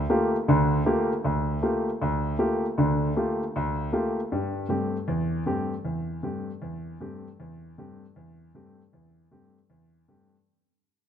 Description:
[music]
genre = jazz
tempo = 156 BPM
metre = 4/4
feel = swing 64% on 8ths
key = unclear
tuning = A4 = 440 Hz
[part]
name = warm grand piano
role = solo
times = 0.0-10.3 s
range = D2 to G4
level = -24 LUFS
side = equal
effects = none
[sound]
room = moderate scoring stage reverb, RT60 1.8 s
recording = close, detailed microphones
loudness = -24 LUFS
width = side -9 dB against mid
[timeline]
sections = 0.0-10.5 A section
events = fade-out 0.0-10.5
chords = 0.0 Gm9; 4.3 Am7

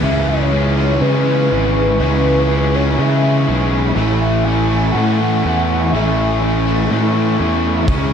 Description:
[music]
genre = rock, shoegaze and dream pop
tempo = 122 BPM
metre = 4/4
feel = straight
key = unclear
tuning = A4 = 440 Hz
[part]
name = pure breathy sine lead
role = melody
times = 0.0-6.7 s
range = B4 to G#5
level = -21 LUFS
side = equal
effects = chorus, slapback echo
[part]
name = dark analog pad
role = sustained chords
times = 0.0-8.1 s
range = A4 to C#6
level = -25 LUFS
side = left 3 dB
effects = lush chorus
[part]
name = crunchy overdriven guitar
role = riff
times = 0.0-8.1 s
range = A2 to A4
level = -21 LUFS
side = left 13 dB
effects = ensemble chorus
[part]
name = distorted electric guitar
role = riff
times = 0.0-8.1 s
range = A2 to C#4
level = -24 LUFS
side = left 1 dB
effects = overdrive
[part]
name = overdriven semi-hollow guitar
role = riff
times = 0.0-8.1 s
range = A2 to E4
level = -21 LUFS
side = right 9 dB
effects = reverse reverb
[part]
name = fuzz fingered electric bass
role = bass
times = 0.0-8.1 s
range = G#1 to C#3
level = -17 LUFS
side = equal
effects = overdrive
[part]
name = huge arena drum kit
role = drums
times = 7.9-8.0 s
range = crash cymbal, kick drum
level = -24 LUFS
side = equal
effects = none
[sound]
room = light reverb, studio reverb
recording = dark, warm production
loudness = -13 LUFS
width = side -7 dB against mid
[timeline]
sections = 0.0-8.1 A section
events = none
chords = 0.0 C#m7; 4.0 Amaj7

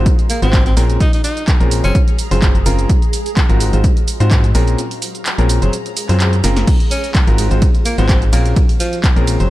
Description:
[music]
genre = piano house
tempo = 127 BPM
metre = 4/4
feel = swing 54% on 16ths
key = unclear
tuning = A4 = 440 Hz
[part]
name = clear grand piano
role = riff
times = 0.0-9.5 s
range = Ab2 to C5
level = -21 LUFS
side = left 1 dB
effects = sidechain pumping
[part]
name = organ-like FM bass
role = bass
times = 0.0-9.5 s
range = Gb1 to Ab2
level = -14 LUFS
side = equal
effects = sidechain pumping
[part]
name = granular cloud pad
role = texture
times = 0.0-9.5 s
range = Ab4 to Bb5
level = -28 LUFS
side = right 2 dB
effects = built-in reverb, sidechain pumping
[part]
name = electronic kick drum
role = drums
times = 0.1-9.1 s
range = none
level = -14 LUFS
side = equal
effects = none
[part]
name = punchy analog drum machine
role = drums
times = 0.1-9.5 s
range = crash cymbal, handclaps, hi-hat, ride cymbal, shaker, snare drum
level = -23 LUFS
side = right 2 dB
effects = none
[part]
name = warm tenor saxophone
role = melody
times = 0.3-2.0, 6.9-9.0 s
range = F3 to Eb4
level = -23 LUFS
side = equal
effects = ping-pong delay
[sound]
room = digital ambience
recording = none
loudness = -12 LUFS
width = side -16 dB against mid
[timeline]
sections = 0.0-9.5 A section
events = break 4.8-6.7; drum fill 6.4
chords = 0.0 Ab13; 0.8 Gbmaj9#11; 2.9 Dbmaj9; 4.5 Gbmaj9#11; 6.7 Dbmaj9; 8.3 Gbmaj9#11

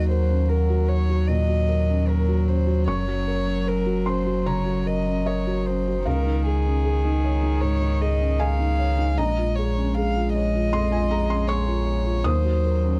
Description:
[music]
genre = neoclassical piano and strings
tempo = 76 BPM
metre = 4/4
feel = rubato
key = unclear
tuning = A4 = 440 Hz
[part]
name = dark violin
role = melody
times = 0.0-13.0 s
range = Ab4 to F5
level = -31 LUFS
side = equal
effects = none
[part]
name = rich cello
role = second line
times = 0.0-13.0 s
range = Eb3 to Ab3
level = -31 LUFS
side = equal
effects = none
[part]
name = felt-muted upright piano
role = accompaniment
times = 0.0-13.0 s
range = Bb1 to Eb6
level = -29 LUFS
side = equal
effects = none
[part]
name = punchy sub bass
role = bass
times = 0.0-13.0 s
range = Gb1 to Eb2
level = -25 LUFS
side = equal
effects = none
[sound]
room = little or no reverb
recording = dry, close 1970s-style studio recording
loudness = -23 LUFS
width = mono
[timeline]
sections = 0.0-13.0 A section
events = none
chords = 0.0 Ebm7; 2.9 Gb; 6.1 Dbadd9; 9.2 Bbm7; 12.2 Ebm7

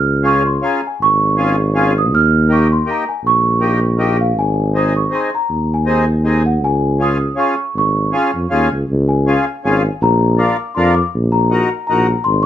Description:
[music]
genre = alpine folk, alpine dance band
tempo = 160 BPM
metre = 3/4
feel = swing 54% on 8ths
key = Db major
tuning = A4 = 440 Hz
[part]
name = celesta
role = melody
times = 0.0-12.5 s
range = F5 to F6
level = -18 LUFS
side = right 1 dB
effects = plate reverb
[part]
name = mellow tuba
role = bass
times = 0.0-12.5 s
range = Ab1 to F2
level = -15 LUFS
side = equal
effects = none
[part]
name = accordion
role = accompaniment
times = 0.2-12.1 s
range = Bb3 to Bb4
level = -18 LUFS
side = left 2 dB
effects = none
[sound]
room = moderate studio reverb, RT60 0.6 s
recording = none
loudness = -13 LUFS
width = side -11 dB against mid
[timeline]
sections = 0.0-8.9 A section; 8.9-12.5 B section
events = none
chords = 0.0 Db; 2.1 Eb7; 4.4 Ab; 6.6 Db; 10.0 Bb; 11.1 Ebm/Bb

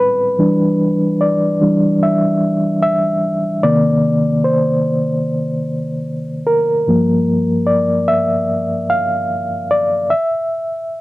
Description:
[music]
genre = R&B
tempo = 74 BPM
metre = 4/4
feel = swing 55% on 16ths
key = unclear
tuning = A4 = 440 Hz
[part]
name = mellow reed electric piano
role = solo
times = 0.0-11.0 s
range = G2 to F5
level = -14 LUFS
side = equal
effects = fast tremolo
[sound]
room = light reverb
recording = dry, close 1970s-style studio recording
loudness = -14 LUFS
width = side -18 dB against mid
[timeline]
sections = 0.4-11.0 A section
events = reed electric piano solo 0.4-11.0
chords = 0.4 Em7; 3.6 Cm9; 6.9 Gm7; 10.1 N.C.

